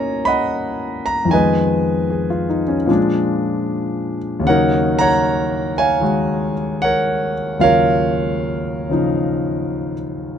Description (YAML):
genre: solo jazz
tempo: 76 BPM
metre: 4/4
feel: swing 66% on 8ths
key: Eb minor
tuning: A4 = 440 Hz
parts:
  - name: clear concert grand piano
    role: solo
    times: 0.0-10.4 s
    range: Eb2 to B5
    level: -16 LUFS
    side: equal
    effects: none
room: light reverb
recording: close, detailed microphones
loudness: -16 LUFS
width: side -8 dB against mid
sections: 0.0-10.4 A section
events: none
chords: 0.0 Bmaj9; 1.3 Fm7b5; 2.9 Bb7; 4.5 Ebm9